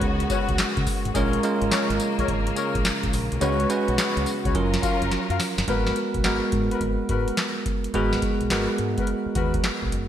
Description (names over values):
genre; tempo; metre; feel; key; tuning
R&B, new jack swing; 106 BPM; 4/4; swing 66% on 16ths; G# dorian; A4 = 439 Hz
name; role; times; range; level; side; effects
bell-like tine electric piano; accompaniment; 0.0-10.1 s; F#3 to B4; -26 LUFS; right 3 dB; none
warm studio string section; sustained chords; 0.0-5.7 s; C#3 to A#4; -30 LUFS; left 3 dB; none
mellow horn section; stabs; 0.0-9.5 s; B3 to E#5; -30 LUFS; left 6 dB; digital delay
deep dub fingered electric bass; bass; 0.0-10.1 s; F#1 to C#3; -28 LUFS; equal; none
booming analog drum machine; drums; 0.0-10.1 s; handclaps, hi-hat, kick drum, snare drum, tambourine; -26 LUFS; equal; gated reverb
room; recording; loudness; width
moderate lush hall reverb, RT60 1.8 s, digital ambience; bright 1980s-style digital production; -21 LUFS; side -10 dB against mid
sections
0.0-5.7 A section; 5.7-10.1 B section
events
drum fill 5.1-5.7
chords
0.0 C#7sus4; 1.1 A#m7; 3.4 C#7sus4; 4.5 F#maj7; 5.7 G#m9